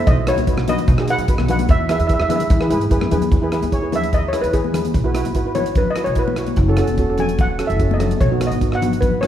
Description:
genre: calypso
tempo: 147 BPM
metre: 4/4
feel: straight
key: E major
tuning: A4 = 436 Hz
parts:
  - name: steel pan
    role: accompaniment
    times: 0.0-9.3 s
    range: B3 to C#5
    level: -23 LUFS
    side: right 2 dB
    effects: none
  - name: steel pan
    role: melody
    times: 0.1-9.3 s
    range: G#4 to G#5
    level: -22 LUFS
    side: equal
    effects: none
  - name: upright bass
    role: bass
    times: 0.1-9.2 s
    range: E1 to E3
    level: -21 LUFS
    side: equal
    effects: none
  - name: tight funk drum kit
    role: drums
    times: 0.1-9.3 s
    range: hi-hat, kick drum, rim click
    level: -20 LUFS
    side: equal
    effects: none
  - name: congas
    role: percussion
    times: 0.4-9.3 s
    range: none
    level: -25 LUFS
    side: left 6 dB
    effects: none
room: moderate scoring stage reverb, RT60 1.6 s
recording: recorded in a church or concert hall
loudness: -15 LUFS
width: side -11 dB against mid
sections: 0.0-3.3 A section; 3.3-9.3 B section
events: steel pan solo 3.3-9.3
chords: 0.1 B; 1.7 E; 3.3 Emaj7; 4.9 Bsus4; 6.6 F#m7; 8.2 B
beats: | 0.07 0.47 0.88 1.28 | 1.69 2.10 2.50 2.91 | 3.32 3.73 4.13 4.54 | 4.95 5.35 5.76 6.17 | 6.58 6.98 7.39 7.80 | 8.21 8.62 9.02

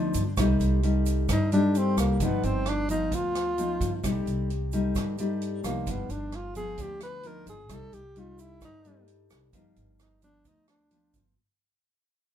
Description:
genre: bossa nova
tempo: 131 BPM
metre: 4/4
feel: straight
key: C dorian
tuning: A4 = 443 Hz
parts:
  - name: nylon-string guitar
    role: accompaniment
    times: 0.0-11.3 s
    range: G2 to Eb4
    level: -28 LUFS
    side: left 2 dB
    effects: none
  - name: upright bass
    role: bass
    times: 0.0-11.3 s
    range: G1 to G2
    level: -30 LUFS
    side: right 1 dB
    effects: none
  - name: swinging big-band drum kit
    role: drums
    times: 0.1-11.2 s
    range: hi-hat, kick drum, rim click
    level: -34 LUFS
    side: right 2 dB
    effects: none
  - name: tube shaker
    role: percussion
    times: 0.1-11.4 s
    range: none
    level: -45 LUFS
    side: right 9 dB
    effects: none
  - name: breathy tenor saxophone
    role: melody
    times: 1.3-11.2 s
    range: Bb3 to B4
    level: -31 LUFS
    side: equal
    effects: none
room: light reverb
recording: minimal, uncompressed stereo recording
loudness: -24 LUFS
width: side -10 dB against mid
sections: 0.0-11.4 A section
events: fade-out 0.0-11.4; tenor saxophone solo 0.0-11.4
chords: 0.4 Cm6; 2.2 G7b13; 4.0 Cm6; 5.9 G7b13; 7.7 Cm6; 9.5 G7b13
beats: | 0.37 0.83 1.29 1.75 | 2.20 2.66 3.12 3.58 | 4.03 4.49 4.95 5.41 | 5.87 6.32 6.78 7.24 | 7.70 8.16 8.61 9.07 | 9.53 9.99 10.45 10.91

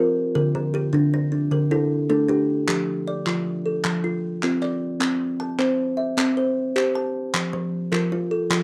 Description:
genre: southern african traditional, mbira-style interlocking cycle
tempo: 103 BPM (dotted quarters)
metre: 12/8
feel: straight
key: F major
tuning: A4 = 439 Hz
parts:
  - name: kalimba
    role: arpeggios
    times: 0.0-8.6 s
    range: D3 to A5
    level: -24 LUFS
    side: equal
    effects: none
  - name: kalimba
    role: arpeggios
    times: 0.0-3.1, 7.5-8.6 s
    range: D3 to C5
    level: -29 LUFS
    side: equal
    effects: none
  - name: group handclap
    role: percussion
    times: 2.7-8.6 s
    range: none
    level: -29 LUFS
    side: equal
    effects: none
room: little or no reverb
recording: dry, close 1970s-style studio recording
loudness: -23 LUFS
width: mono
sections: 0.0-2.7 A section; 2.7-8.6 B section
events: none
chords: 0.4 D5; 2.7 F; 5.0 C; 7.3 F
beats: | 0.35 0.94 1.52 2.10 | 2.68 3.26 3.84 4.42 | 5.01 5.59 6.17 6.76 | 7.34 7.92 8.51

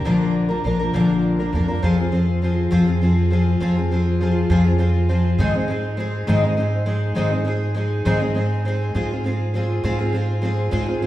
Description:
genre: acoustic folk duo or small band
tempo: 67 BPM (dotted quarters)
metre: 6/8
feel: straight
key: unclear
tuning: A4 = 440 Hz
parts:
  - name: fingerpicked twelve-string acoustic guitar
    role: accompaniment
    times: 0.0-11.1 s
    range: Ab2 to Bb4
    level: -20 LUFS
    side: left 1 dB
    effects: none
  - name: upright bass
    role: bass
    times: 0.0-11.1 s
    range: Bb1 to Ab2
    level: -22 LUFS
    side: right 1 dB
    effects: none
room: wet recital hall reverb, RT60 1.3 s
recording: heard from further back in the room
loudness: -18 LUFS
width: side -14 dB against mid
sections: 0.0-1.8 A section; 1.8-11.1 B section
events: none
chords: 0.0 Bb; 1.8 Fm; 5.4 Ab; 8.9 Fm/Ab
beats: | 0.04 0.93 | 1.82 2.71 | 3.60 4.49 | 5.38 6.27 | 7.16 8.05 | 8.94 9.83 | 10.72

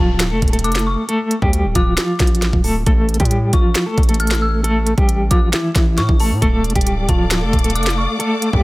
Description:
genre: hip hop, trap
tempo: 135 BPM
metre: 4/4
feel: half-time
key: D harmonic minor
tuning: A4 = 444 Hz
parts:
  - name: mellow electric guitar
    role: melody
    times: 0.0-8.6 s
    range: E3 to A4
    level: -19 LUFS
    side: equal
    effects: tremolo
  - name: dark detuned synth bell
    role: second line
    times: 0.0-8.2 s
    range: A5 to F6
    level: -27 LUFS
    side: left 3 dB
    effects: chorus, digital delay
  - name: hard-hitting 808-style bass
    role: bass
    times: 0.0-8.6 s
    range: C#1 to A2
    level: -19 LUFS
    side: equal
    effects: none
  - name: downlifter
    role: sound effects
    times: 0.0-2.9 s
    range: none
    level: -37 LUFS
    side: equal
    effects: none
  - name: trap drum kit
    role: drums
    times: 0.2-8.6 s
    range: finger snaps, hi-hat, kick drum, snare drum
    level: -17 LUFS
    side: equal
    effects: none
  - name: dark symphonic string section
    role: sustained chords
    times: 6.4-8.6 s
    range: A4 to D6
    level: -25 LUFS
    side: left 1 dB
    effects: none
room: digital ambience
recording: none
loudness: -14 LUFS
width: side -20 dB against mid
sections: 0.0-8.6 A section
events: none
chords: 0.0 Dm; 2.9 A; 6.4 Dm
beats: 0.20 0.64 | 1.09 1.53 1.98 2.42 | 2.87 3.31 3.75 4.20 | 4.64 5.09 5.53 5.98 | 6.42 6.87 7.31 7.75 | 8.20

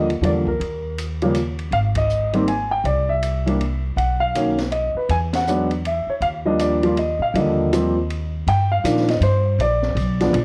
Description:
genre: jazz piano trio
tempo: 160 BPM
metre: 3/4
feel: swing 63% on 8ths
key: Eb major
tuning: A4 = 441 Hz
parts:
  - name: warm grand piano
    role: melody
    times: 0.0-10.4 s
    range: Db3 to Ab5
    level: -22 LUFS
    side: equal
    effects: plate reverb
  - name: upright bass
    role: bass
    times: 0.0-10.4 s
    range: Ab1 to Bb2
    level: -25 LUFS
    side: equal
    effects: none
  - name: open jazz drum kit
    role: drums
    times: 0.1-10.4 s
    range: hi-hat, kick drum, ride cymbal, snare drum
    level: -35 LUFS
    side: equal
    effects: none
room: moderate studio reverb, RT60 0.6 s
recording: worn, warbling old tape, cassette tape, warbly pitch drift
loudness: -20 LUFS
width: mono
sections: 0.0-8.5 A section; 8.5-10.4 B section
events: band accent 1.9, 5.3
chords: 0.0 Ebmaj9; 0.6 Eb5; 1.7 Abmaj7(no3); 2.9 Cadd9; 4.0 B; 5.1 Esus2; 6.2 Ebmaj9; 8.5 Cm11; 9.6 Bb(b9)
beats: 0.23 | 0.60 0.98 1.35 | 1.73 2.10 2.48 | 2.85 3.23 3.60 | 3.98 4.35 4.72 | 5.10 5.47 5.85 | 6.22 6.60 6.97 | 7.34 7.72 8.09 | 8.47 8.84 9.22 | 9.59 9.96 10.34

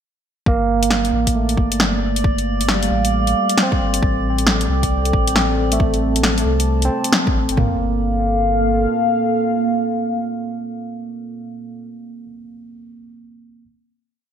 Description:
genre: future garage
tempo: 135 BPM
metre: 4/4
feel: swing 63% on 16ths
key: G minor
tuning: A4 = 441 Hz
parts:
  - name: barky tine electric piano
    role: accompaniment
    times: 0.5-13.6 s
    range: G3 to C4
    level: -23 LUFS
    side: right 3 dB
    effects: sidechain pumping, ping-pong delay
  - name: warm sub bass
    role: bass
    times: 0.5-8.9 s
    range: G1 to C2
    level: -21 LUFS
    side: equal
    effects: sidechain pumping
  - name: deep house drum kit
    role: drums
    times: 0.5-7.7 s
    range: kick drum, toms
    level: -20 LUFS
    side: equal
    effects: none
  - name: drifting glass-harmonics texture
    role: texture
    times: 1.3-7.6 s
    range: D5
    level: -27 LUFS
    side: right 2 dB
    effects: chorus, built-in reverb
  - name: deep house drum kit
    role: drums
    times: 0.8-7.6 s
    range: hi-hat, snare drum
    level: -19 LUFS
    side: left 1 dB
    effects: gated reverb
  - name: dark analog pad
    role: sustained chords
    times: 2.8-11.9 s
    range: Bb3 to A5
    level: -22 LUFS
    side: left 1 dB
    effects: chorus, phaser, vintage 12-bit sampler grit, sidechain pumping
room: moderate plate reverb, RT60 2.3 s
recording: bright 1980s-style digital production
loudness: -16 LUFS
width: side -8 dB against mid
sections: 0.5-7.6 groove; 7.6-11.1 final chord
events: none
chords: 0.5 Gm9; 4.0 Am7; 7.6 Gm9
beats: | 0.47 0.91 1.35 1.80 | 2.24 2.69 3.13 3.58 | 4.02 4.47 4.91 5.36 | 5.80 6.24 6.69 7.13 | 7.58 8.02 8.47 8.91 | 9.36 9.80 10.24 10.69

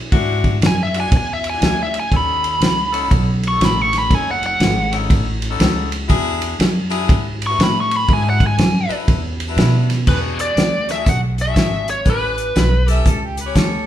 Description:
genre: electric blues shuffle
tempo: 120 BPM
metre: 4/4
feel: swing 64% on 8ths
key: E mixolydian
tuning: A4 = 440 Hz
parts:
  - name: bright saxophone section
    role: stabs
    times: 0.1-13.9 s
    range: G#3 to C#5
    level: -26 LUFS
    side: left 6 dB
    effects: none
  - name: upright bass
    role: bass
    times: 0.1-13.9 s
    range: F#1 to B2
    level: -20 LUFS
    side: equal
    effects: none
  - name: warm soul drum kit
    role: drums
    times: 0.1-13.7 s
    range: crash cymbal, hi-hat, kick drum, ride cymbal, snare drum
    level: -18 LUFS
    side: equal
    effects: none
  - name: biting lead guitar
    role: melody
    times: 0.7-12.9 s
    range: B4 to C#6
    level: -20 LUFS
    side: equal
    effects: overdrive
  - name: warm harmonica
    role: second line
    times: 12.9-13.9 s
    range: G4 to E5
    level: -25 LUFS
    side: right 4 dB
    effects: overdrive
room: moderate large studio reverb, RT60 1.2 s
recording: band playing live in one room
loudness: -14 LUFS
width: side -11 dB against mid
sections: 0.0-10.1 A section; 10.1-13.9 B section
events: lead electric guitar solo 0.0-10.1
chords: 0.0 E9; 2.1 B9; 6.1 E9; 12.1 A9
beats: | 0.12 0.62 1.12 1.61 | 2.11 2.61 3.11 3.61 | 4.11 4.60 5.10 5.60 | 6.10 6.59 7.09 7.59 | 8.09 8.58 9.08 9.58 | 10.08 10.57 11.07 11.57 | 12.07 12.57 13.07 13.57

